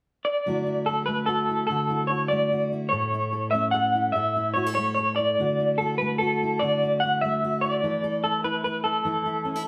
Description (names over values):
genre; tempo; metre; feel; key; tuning
folk; 146 BPM; 3/4; straight; unclear; A4 = 437 Hz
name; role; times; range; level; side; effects
electric guitar through a small old amp; melody; 0.2-9.7 s; A4 to F#5; -26 LUFS; equal; tremolo
fingerpicked steel-string acoustic guitar; accompaniment; 0.5-9.7 s; A2 to A4; -31 LUFS; equal; none
room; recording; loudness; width
wet stone room reverb, RT60 1.0 s; band playing live in one room; -25 LUFS; mono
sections
0.5-9.7 A section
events
none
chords
0.5 Dadd9; 2.9 A; 5.4 Dadd9; 7.8 Esus4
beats
0.05 | 0.46 0.87 1.28 | 1.69 2.10 2.51 | 2.92 3.33 3.74 | 4.15 4.56 4.97 | 5.38 5.79 6.20 | 6.61 7.02 7.43 | 7.83 8.24 8.65 | 9.06 9.47